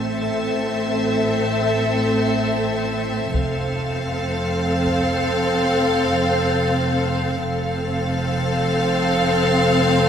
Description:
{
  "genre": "cinematic, suspense film score",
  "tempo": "free time",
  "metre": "none",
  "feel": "none",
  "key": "unclear",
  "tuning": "A4 = 440 Hz",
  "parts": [
    { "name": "rich studio violin section", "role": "melody", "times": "0.0-10.1 s", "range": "E5 to F5", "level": "-26 LUFS", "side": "left 3 dB", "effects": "none" },
    { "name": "warm chamber violin section", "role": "second line", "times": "0.0-10.1 s", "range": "A4", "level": "-25 LUFS", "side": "left 3 dB", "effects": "none" },
    { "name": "rich studio viola section", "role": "accompaniment", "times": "0.0-10.1 s", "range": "C4", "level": "-24 LUFS", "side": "equal", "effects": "none" },
    { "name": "icy glass pad", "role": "sustained chords", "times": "0.0-10.1 s", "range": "A4 to F5", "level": "-27 LUFS", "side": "right 2 dB", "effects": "chorus, built-in reverb" },
    { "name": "rich studio cello section", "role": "bass", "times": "0.0-10.1 s", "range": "F2 to A2", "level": "-25 LUFS", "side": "right 2 dB", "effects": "none" },
    { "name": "warm studio double bass section", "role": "bass", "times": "0.0-10.1 s", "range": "F1 to A1", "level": "-27 LUFS", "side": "right 2 dB", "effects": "none" },
    { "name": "taiko ensemble", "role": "drums", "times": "3.3-5.3 s", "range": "none", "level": "-28 LUFS", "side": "left 1 dB", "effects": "none" }
  ],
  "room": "moderate concert hall reverb, RT60 2.4 s",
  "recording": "none",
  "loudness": "-18 LUFS",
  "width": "side -8 dB against mid",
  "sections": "0.0-10.1 A section",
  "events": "none",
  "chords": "0.0 Am; 3.3 F"
}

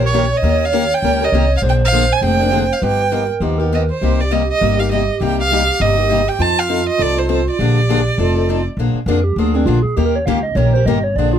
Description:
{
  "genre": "acoustic string swing (jazz manouche)",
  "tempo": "201 BPM",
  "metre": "4/4",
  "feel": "swing 58% on 8ths",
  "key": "Bb mixolydian",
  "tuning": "A4 = 445 Hz",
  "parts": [
    { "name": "warm violin", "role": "melody", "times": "0.0-8.6 s", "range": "C5 to A5", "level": "-18 LUFS", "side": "right 4 dB", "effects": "none" },
    { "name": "reedy FM lead", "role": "second line", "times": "0.0-11.4 s", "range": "C4 to F5", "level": "-20 LUFS", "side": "right 4 dB", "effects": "chorus" },
    { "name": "picked steel-string acoustic guitar", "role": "accompaniment", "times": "0.0-11.4 s", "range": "C3 to Bb4", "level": "-20 LUFS", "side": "left 7 dB", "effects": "none" },
    { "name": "upright bass", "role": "bass", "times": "0.0-11.4 s", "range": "F1 to F2", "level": "-17 LUFS", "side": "equal", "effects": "none" }
  ],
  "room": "light reverb",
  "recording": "close, detailed microphones",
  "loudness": "-13 LUFS",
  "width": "side -9 dB against mid",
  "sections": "0.0-8.8 A section; 8.8-11.4 B section",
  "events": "soft synth lead solo 8.8-11.4",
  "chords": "0.0 Eb7; 1.6 Bb7; 2.8 G7alt; 4.0 Cm7; 6.4 F7; 7.6 Bb7; 8.2 F7; 8.8 Bb7; 10.0 Eb7"
}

